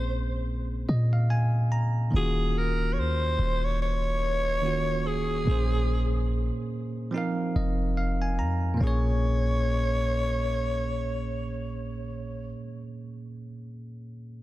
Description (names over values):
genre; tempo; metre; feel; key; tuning
contemporary R&B; 72 BPM; 4/4; swing 58% on 16ths; Bb minor; A4 = 440 Hz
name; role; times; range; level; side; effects
breathy alto saxophone; melody; 0.0-12.5 s; Ab4 to Db5; -31 LUFS; left 1 dB; analog delay
bell-like tine electric piano; accompaniment; 0.0-14.4 s; Bb2 to Bb5; -31 LUFS; right 1 dB; auto-pan
clean 808-style bass; bass; 0.0-12.5 s; Eb1 to Bb2; -27 LUFS; equal; none
room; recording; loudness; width
light reverb, studio reverb; echo-heavy mix; -25 LUFS; side -16 dB against mid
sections
0.0-8.8 A section; 8.8-12.1 B section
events
tine electric piano fill 0.5-2.1, 7.1-8.8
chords
0.0 Bbm9; 2.1 Ebm9; 5.5 Bbm9; 7.1 F7sus4; 8.8 Bbm7